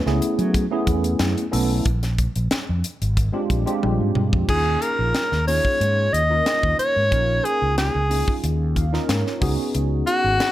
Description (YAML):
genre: electric jazz fusion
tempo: 91 BPM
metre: 4/4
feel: straight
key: Eb minor from 4.5 s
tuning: A4 = 440 Hz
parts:
  - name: tine electric piano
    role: accompaniment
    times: 0.1-10.5 s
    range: Ab3 to F5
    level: -25 LUFS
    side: right 1 dB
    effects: medium stereo tremolo, analog chorus
  - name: fretless electric bass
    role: bass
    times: 0.1-10.4 s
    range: Ab1 to Gb3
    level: -22 LUFS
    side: equal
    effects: none
  - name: crisp fusion drum kit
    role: drums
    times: 0.1-10.5 s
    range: crash cymbal, hi-hat, kick drum, snare drum, toms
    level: -24 LUFS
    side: equal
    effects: none
  - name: clear soprano saxophone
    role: melody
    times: 4.5-10.5 s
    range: Gb4 to Eb5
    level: -20 LUFS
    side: equal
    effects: slapback echo
room: light reverb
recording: none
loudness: -18 LUFS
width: side -14 dB against mid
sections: 0.0-4.5 A section; 4.5-10.5 B section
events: drum fill 3.8-4.5; tine electric piano fill 8.4-9.7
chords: 0.0 Gbm11; 1.9 Bb13; 4.5 Eb9sus4; 9.4 Db9sus4